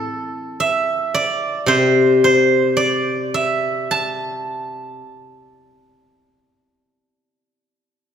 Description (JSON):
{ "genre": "chinese traditional, Chinese solo plucked strings", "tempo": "49-56 BPM", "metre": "4/4", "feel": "rubato", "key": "A yu mode", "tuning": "A4 = 440 Hz", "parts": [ { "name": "steel-string zither", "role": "solo", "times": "0.0-7.3 s", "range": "C3 to A5", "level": "-16 LUFS", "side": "equal", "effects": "none" } ], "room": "wet concert hall reverb, RT60 2.0 s", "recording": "recorded in a church or concert hall", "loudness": "-15 LUFS", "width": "side -8 dB against mid", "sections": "0.0-8.1 A section", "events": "none", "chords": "none" }